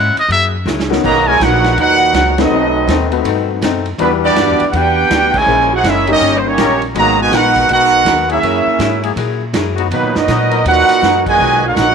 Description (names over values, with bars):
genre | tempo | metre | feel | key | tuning
jazz, big band swing | 162 BPM | 4/4 | swing 63% on 8ths | B major | A4 = 439 Hz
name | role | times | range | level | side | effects
trumpet with metal mute | melody | 0.0-0.5 s | D#5 to F#5 | -15 LUFS | left 1 dB | none
archtop guitar, miked and amplified | accompaniment | 0.0-11.9 s | A#2 to A#4 | -22 LUFS | left 13 dB | none
upright bass | bass | 0.0-11.9 s | F#1 to B2 | -20 LUFS | left 1 dB | none
vintage drum kit | drums | 0.2-11.9 s | crash cymbal, hi-hat, kick drum, ride cymbal, snare drum | -21 LUFS | right 6 dB | none
warm grand piano | accompaniment | 0.9-8.0 s | G3 to C5 | -20 LUFS | left 15 dB | none
clear trombone section | second line | 1.0-11.9 s | A#2 to G4 | -18 LUFS | right 11 dB | none
clear trumpet section | melody | 1.1-11.9 s | F#3 to A#5 | -13 LUFS | right 1 dB | none
warm trombone section | sustained chords | 1.3-11.6 s | F#3 to B4 | -22 LUFS | left 12 dB | none
room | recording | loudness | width
light reverb, studio reverb | 1960s-style stereo with parts hard left and right | -10 LUFS | side -6 dB against mid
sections
0.0-1.0 A section; 1.0-11.9 B section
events
muted trumpet solo 0.0-1.0; drum fill 0.7-1.0; band accent 2.3, 5.3, 11.2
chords
0.3 F#9; 1.0 Bmaj7; 2.5 B7b9; 4.0 Em9; 5.5 A#m7b5; 6.2 D#7; 6.9 G#m9; 8.4 F#9